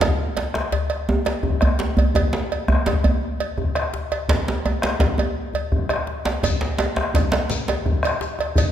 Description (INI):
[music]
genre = west african traditional, West African drum ensemble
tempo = 112 BPM (dotted quarters)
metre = 12/8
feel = straight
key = none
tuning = none
[part]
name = bombo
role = percussion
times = 0.0-8.7 s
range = none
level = -24 LUFS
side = equal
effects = none
[part]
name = cowbell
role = percussion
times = 0.0-8.7 s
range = none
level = -27 LUFS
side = right 5 dB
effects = none
[part]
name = djembe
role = percussion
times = 0.0-8.7 s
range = none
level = -28 LUFS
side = left 5 dB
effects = none
[part]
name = djembe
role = percussion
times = 0.0-7.8 s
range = none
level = -22 LUFS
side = right 1 dB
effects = none
[part]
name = shekere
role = percussion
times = 6.4-8.7 s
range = none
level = -31 LUFS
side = left 5 dB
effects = none
[sound]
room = wet recital hall reverb, RT60 1.7 s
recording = none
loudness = -19 LUFS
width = side -10 dB against mid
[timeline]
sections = 0.0-8.7 A section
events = drum fill 5.5-6.4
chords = none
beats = | 0.01 0.55 1.08 1.62 | 2.15 2.69 3.23 3.76 | 4.30 4.83 5.37 5.90 | 6.44 6.97 7.51 8.04 | 8.57